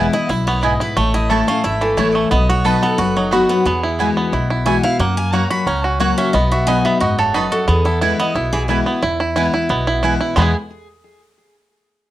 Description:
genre	bluegrass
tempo	179 BPM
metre	4/4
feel	straight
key	E major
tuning	A4 = 442 Hz
part	bluegrass banjo	melody	0.0-10.6 s	E3 to A4	-19 LUFS	right 3 dB	cassette tape
part	picked steel-string acoustic guitar	melody	0.0-10.5 s	D#4 to B5	-22 LUFS	left 1 dB	cassette tape, tape echo
part	picked steel-string acoustic guitar	accompaniment	0.0-10.5 s	E2 to F#4	-21 LUFS	left 5 dB	none
part	mandolin	stabs	0.0-10.5 s	A3 to B5	-22 LUFS	right 6 dB	none
part	upright bass	bass	0.0-10.5 s	F#1 to F#2	-20 LUFS	equal	none
room	moderate studio reverb, RT60 0.6 s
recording	home recording on cassette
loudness	-14 LUFS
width	side -14 dB against mid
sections	0.0-9.0 A section; 9.0-10.4 B section; 10.4-11.7 C section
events	none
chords	0.0 E; 1.0 A; 2.3 B; 3.7 Eadd9; 5.0 F#; 6.3 B; 7.7 E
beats	0.30 0.63 | 0.97 1.30 1.64 1.98 | 2.31 2.65 2.98 3.32 | 3.66 3.99 4.33 4.66 | 5.00 5.33 5.67 6.00 | 6.34 6.68 7.01 7.35 | 7.68 8.02 8.35 8.69 | 9.03 9.36 9.70 10.03 | 10.37

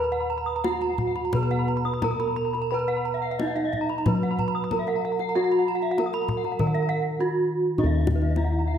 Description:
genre	Balinese gamelan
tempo	87-103 BPM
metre	4/4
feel	straight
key	Eb pelog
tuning	A4 = 440 Hz
part	gamelan-type bronze metallophone	melody	0.0-8.8 s	Eb4 to Cb5-20c	-27 LUFS	right 3 dB	none
part	gamelan-type bronze metallophone	arpeggios	0.0-8.7 s	Eb5 to Eb6	-32 LUFS	left 6 dB	none
part	gamelan-type bronze metallophone	arpeggios	0.0-8.8 s	Cb5-20c to Cb6-20c	-32 LUFS	right 6 dB	none
part	gamelan-type bossed gongs	bass	0.0-8.8 s	Eb2 to Cb5-20c	-26 LUFS	left 2 dB	none
part	kendang	percussion	0.6-8.5 s	none	-30 LUFS	left 2 dB	none
room	moderate recital hall reverb, RT60 1.5 s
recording	none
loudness	-22 LUFS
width	side -9 dB against mid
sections	0.0-7.8 A section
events	none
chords	none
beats	0.64 1.33 2.02 | 2.71 3.39 4.06 4.71 | 5.35 5.98 6.59 7.20 | 7.79 8.37

